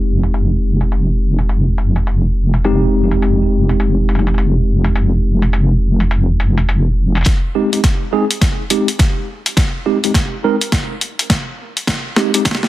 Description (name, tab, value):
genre	glitch hop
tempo	104 BPM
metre	4/4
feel	swing 62% on 16ths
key	unclear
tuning	A4 = 441 Hz
part	mellow tine electric piano	stabs	0.0-12.4 s	Ab3 to Bb4	-19 LUFS	right 1 dB	medium stereo tremolo, sidechain pumping, tape echo
part	wobble bass	bass	0.0-7.2 s	F1	-13 LUFS	equal	chorus
part	boom bap sampler-style drum kit	drums	0.2-12.7 s	hi-hat, snare drum	-19 LUFS	left 1 dB	low-pass filter on hats, low-pass filter on snare, low-pass filter on cymbals
part	electronic kick drum	drums	7.3-12.6 s	none	-16 LUFS	equal	none
room	digital ambience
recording	dense, heavily limited modern master, high-pass filter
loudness	-13 LUFS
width	side -15 dB against mid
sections	0.0-7.3 A section; 7.3-12.7 B section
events	build-up 7.3-12.7; drum fill 7.3-12.7; filter sweep 7.3-12.7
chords	0.0 Fm7; 7.3 Abmaj7